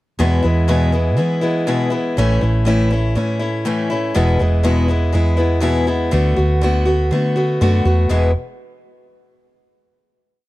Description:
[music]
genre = folk rock and heartland rock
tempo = 121 BPM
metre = 4/4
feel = straight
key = E mixolydian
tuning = A4 = 443 Hz
[part]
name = picked steel-string acoustic guitar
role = accompaniment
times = 0.2-8.3 s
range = E2 to F#4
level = -17 LUFS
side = left 1 dB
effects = none
[part]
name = hollow-body short-scale fingered electric bass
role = bass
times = 0.2-8.3 s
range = E1 to E3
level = -17 LUFS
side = right 1 dB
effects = none
[sound]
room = studio reverb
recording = dry, close 1970s-style studio recording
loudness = -14 LUFS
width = side -17 dB against mid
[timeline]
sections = 0.2-8.1 verse; 8.1-10.1 final chord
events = none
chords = 0.2 E; 2.2 A; 4.2 E; 6.1 D6; 8.1 E5

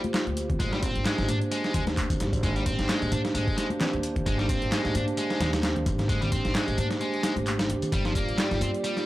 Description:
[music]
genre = breakbeat, breaks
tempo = 131 BPM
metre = 4/4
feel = swing 56% on 16ths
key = unclear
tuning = A4 = 440 Hz
[part]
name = dark analog pad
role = sustained chords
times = 0.0-9.1 s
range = Bb3 to D5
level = -31 LUFS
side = right 2 dB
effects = chorus, vintage 12-bit sampler grit, sidechain pumping
[part]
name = punchy analog drum machine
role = drums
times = 0.0-9.1 s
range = handclaps, hi-hat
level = -37 LUFS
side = equal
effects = none
[part]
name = congas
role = percussion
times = 0.0-8.7 s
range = none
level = -36 LUFS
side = left 1 dB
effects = none
[part]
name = dusty soul sampler-style drum kit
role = drums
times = 0.1-9.1 s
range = hi-hat, kick drum, snare drum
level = -29 LUFS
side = equal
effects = overdrive
[part]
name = upright bass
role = bass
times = 0.3-8.7 s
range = G1 to Ab2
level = -30 LUFS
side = equal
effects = none
[part]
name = overdriven electric guitar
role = riff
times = 0.6-9.1 s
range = F3 to D4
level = -32 LUFS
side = left 1 dB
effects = tube saturation, analog delay
[sound]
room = digital ambience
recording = dry, gritty hardware recording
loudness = -24 LUFS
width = side -16 dB against mid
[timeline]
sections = 0.0-9.1 A section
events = none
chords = 0.0 Gm7; 0.6 Abmaj9#11; 7.9 Gm7

